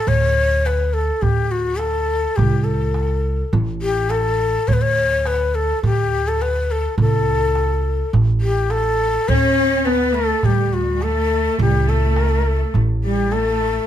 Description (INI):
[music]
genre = Arabic maqam ensemble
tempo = 104 BPM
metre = 4/4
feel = straight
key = unclear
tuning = A4 = 444 Hz
[part]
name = breathy ney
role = melody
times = 0.0-13.9 s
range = F4+48c to C#5-45c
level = -20 LUFS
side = left 3 dB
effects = plate reverb
[part]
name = upright bass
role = bass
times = 0.1-13.8 s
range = A1 to D2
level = -21 LUFS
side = right 1 dB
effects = none
[part]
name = darbuka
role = percussion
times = 0.1-13.5 s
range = none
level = -21 LUFS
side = right 2 dB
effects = none
[part]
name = clear studio cello section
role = second line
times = 9.3-13.9 s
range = G3 to C4+50c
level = -22 LUFS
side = right 1 dB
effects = none
[sound]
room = light reverb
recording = none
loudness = -16 LUFS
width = side -11 dB against mid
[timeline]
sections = 0.1-13.9 A section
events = none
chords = none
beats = | 0.07 0.65 1.22 1.80 | 2.38 2.95 3.53 4.11 | 4.68 5.26 5.83 6.41 | 6.99 7.56 8.14 8.71 | 9.29 9.87 10.44 11.02 | 11.59 12.17 12.75 13.32